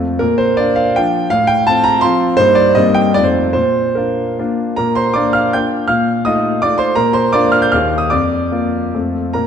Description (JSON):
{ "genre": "classical, romantic triple-time dance for piano with dotted rhythms", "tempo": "136-179 BPM", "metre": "3/4", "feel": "rubato", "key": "Bb major", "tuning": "A4 = 442 Hz", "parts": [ { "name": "warm concert grand piano", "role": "solo", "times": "0.0-9.5 s", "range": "Eb2 to G6", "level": "-12 LUFS", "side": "equal", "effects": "none" } ], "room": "wet scoring stage reverb, RT60 1.9 s", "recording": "dark, warm production", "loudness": "-12 LUFS", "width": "side -8 dB against mid", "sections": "0.0-4.8 A section; 4.8-9.5 A section", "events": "none", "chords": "0.2 Bb; 1.3 F/A; 2.4 Eb/G; 2.8 Cm7/G; 3.2 F7; 3.6 Bb; 5.9 F7/Bb; 7.0 Bb; 7.7 Eb; 8.1 Bb/F; 8.9 F" }